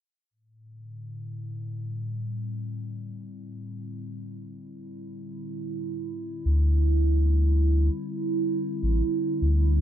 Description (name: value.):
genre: ambient.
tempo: 81 BPM.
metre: 4/4.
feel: swing 60% on 16ths.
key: A minor.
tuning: A4 = 439 Hz.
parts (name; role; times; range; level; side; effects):
warbly tape-like pad; sustained chords; 0.3-9.8 s; A2 to E4; -31 LUFS; right 2 dB; chorus, built-in reverb.
warm sub bass; bass; 6.5-9.8 s; A1 to D2; -20 LUFS; equal; none.
room: light reverb.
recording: none.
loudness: -24 LUFS.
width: side -10 dB against mid.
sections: 0.3-9.8 A section.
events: filter sweep on ambient pad 0.3-9.8.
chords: 0.3 Am7.